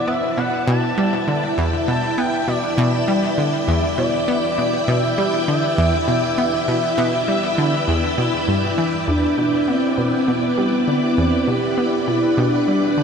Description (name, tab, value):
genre	ambient, sequencer-driven space music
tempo	100 BPM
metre	4/4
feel	straight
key	E minor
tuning	A4 = 441 Hz
part	expressive synth lead	melody	0.0-13.0 s	B3 to A5	-22 LUFS	equal	chorus, shimmer reverb, ping-pong delay
part	string machine, full ensemble	sustained chords	0.0-13.0 s	B3 to A5	-21 LUFS	equal	ensemble chorus, shimmer reverb
part	analog pluck	riff	0.1-13.0 s	E2 to B3	-21 LUFS	equal	chorus, shimmer reverb, ping-pong delay
room	wet huge ambient reverb, RT60 7.7 s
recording	none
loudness	-16 LUFS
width	side -6 dB against mid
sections	0.0-9.1 A section; 9.1-13.0 B section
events	none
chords	0.0 Em7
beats	0.08 0.68 1.28 | 1.88 2.48 3.08 3.68 | 4.28 4.88 5.48 6.08 | 6.68 7.28 7.88 8.48 | 9.08 9.68 10.28 10.88 | 11.48 12.08 12.68